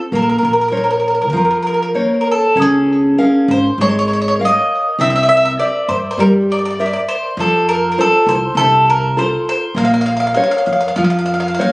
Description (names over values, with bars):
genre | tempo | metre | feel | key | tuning
italian folk, Italian serenade | 100 BPM | 4/4 | rubato | Db major | A4 = 441 Hz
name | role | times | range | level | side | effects
nylon-string guitar | accompaniment | 0.1-11.7 s | C3 to F5 | -16 LUFS | equal | none
upright bass | bass | 0.1-11.6 s | Ab1 to G2 | -24 LUFS | equal | none
mandolin | melody | 0.2-11.7 s | Ab4 to F5 | -15 LUFS | equal | tape echo
room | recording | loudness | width
moderate studio reverb, RT60 0.6 s | recorded on a phone in the room, studio ambience, compression | -12 LUFS | side -23 dB against mid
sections
0.0-2.6 A section; 2.6-11.7 B section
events
none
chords
0.1 Bbmadd9; 2.6 Db6; 5.0 C7; 7.4 F; 9.8 Bbmadd9